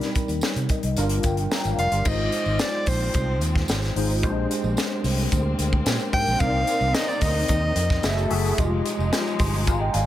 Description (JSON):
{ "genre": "polished 1980s jazz-funk pop", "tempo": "110 BPM", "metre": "4/4", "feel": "straight", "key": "unclear", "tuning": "A4 = 440 Hz", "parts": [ { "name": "tine electric piano", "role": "accompaniment", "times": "0.0-10.1 s", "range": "G3 to C6", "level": "-27 LUFS", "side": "left 1 dB", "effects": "slow stereo tremolo, ensemble chorus" }, { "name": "crisp fusion drum kit", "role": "drums", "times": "0.0-10.1 s", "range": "crash cymbal, hi-hat, kick drum, snare drum", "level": "-26 LUFS", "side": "equal", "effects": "none" }, { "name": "tambourine", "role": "percussion", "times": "0.1-10.1 s", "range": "none", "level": "-40 LUFS", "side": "right 5 dB", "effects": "none" }, { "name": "fingered electric bass", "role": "bass", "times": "0.3-10.1 s", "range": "F1 to C3", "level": "-25 LUFS", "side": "equal", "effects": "none" }, { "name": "bright soprano saxophone", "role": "melody", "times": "1.8-8.3 s", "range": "C5 to G5", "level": "-26 LUFS", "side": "equal", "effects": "none" }, { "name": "warm studio string section", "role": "sustained chords", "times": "2.1-10.1 s", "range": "C3 to A4", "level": "-32 LUFS", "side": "left 1 dB", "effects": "none" } ], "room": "light reverb, small room ambience", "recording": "none", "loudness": "-20 LUFS", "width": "side -13 dB against mid", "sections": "0.0-2.1 A section; 2.1-10.1 B section", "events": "tine electric piano fill 0.4-2.1, 9.1-10.1", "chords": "0.0 Cm7; 1.0 Gm7; 2.1 Ab6; 4.2 Bb13; 6.4 Cm9; 8.0 F#m9; 8.6 Fm9", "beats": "0.43 0.97 1.52 | 2.06 2.60 3.15 3.69 | 4.24 4.78 5.32 5.87 | 6.41 6.95 7.50 8.04 | 8.59 9.13 9.67" }